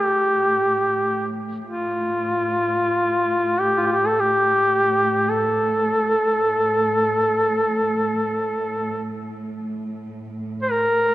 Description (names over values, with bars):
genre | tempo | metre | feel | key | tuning
caucasian folk, Caucasian lament | free time | none | none | unclear | A4 = 439 Hz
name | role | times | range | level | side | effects
warm duduk | melody | 0.0-11.1 s | F4 to C5 | -18 LUFS | equal | tape echo
warm symphonic string section | drone | 0.0-11.1 s | A2 | -29 LUFS | right 2 dB | none
room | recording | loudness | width
moderate concert hall reverb, RT60 2.0 s | lossy compression artefacts | -18 LUFS | side -15 dB against mid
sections
0.0-11.1 A section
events
none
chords
none